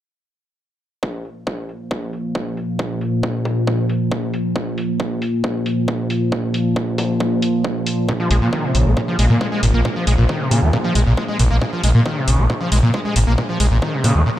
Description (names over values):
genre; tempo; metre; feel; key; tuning
driving peak-time techno; 136 BPM; 4/4; straight; unclear; A4 = 440 Hz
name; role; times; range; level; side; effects
analog drone; drone; 1.8-14.3 s; Bb2 to F3; -22 LUFS; equal; chorus, sidechain pumping
electronic kick drum; drums; 1.0-14.1 s; none; -26 LUFS; equal; distortion, high-pass filter on kick, high-pass filter on room
electronic hi-hat; drums; 1.2-14.1 s; none; -26 LUFS; equal; low-pass filter on hats, low-pass filter on room
overdriven acid bass; riff; 8.1-14.3 s; Bb2 to Bb3; -20 LUFS; equal; distortion, ensemble chorus, sidechain pumping, tape echo
growling FM bass; bass; 8.3-14.2 s; Ab1 to Bb2; -15 LUFS; equal; sidechain pumping
swell; sound effects; 14.3-14.4 s; none; -32 LUFS; left 3 dB; none
room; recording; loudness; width
moderate lush hall reverb, RT60 1.8 s; dreamy mix soaked in reverb; -16 LUFS; side -12 dB against mid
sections
1.0-14.4 A section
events
none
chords
1.0 Bb5